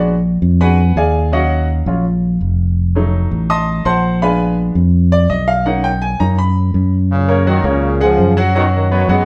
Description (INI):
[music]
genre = latin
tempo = 166 BPM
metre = 4/4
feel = straight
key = unclear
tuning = A4 = 442 Hz
[part]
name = bright upright piano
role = accompaniment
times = 0.0-9.2 s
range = Gb3 to Eb6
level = -19 LUFS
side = equal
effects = none
[part]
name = fingered electric bass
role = bass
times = 0.0-9.2 s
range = F1 to F#2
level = -16 LUFS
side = equal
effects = none
[part]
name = bright trombone section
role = melody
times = 7.1-9.2 s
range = Bb2 to B3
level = -20 LUFS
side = equal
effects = none
[sound]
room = wet studio reverb, RT60 0.8 s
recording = heard from further back in the room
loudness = -15 LUFS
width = mono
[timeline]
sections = 0.0-7.1 A section; 7.1-9.2 B section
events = upright piano solo 0.0-7.1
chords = 0.0 Bb7b9b13; 1.3 Ebm9; 2.8 F7b9; 4.2 Bb7b9; 5.7 Bmaj7; 7.1 Gbadd9; 8.6 Badd9/F#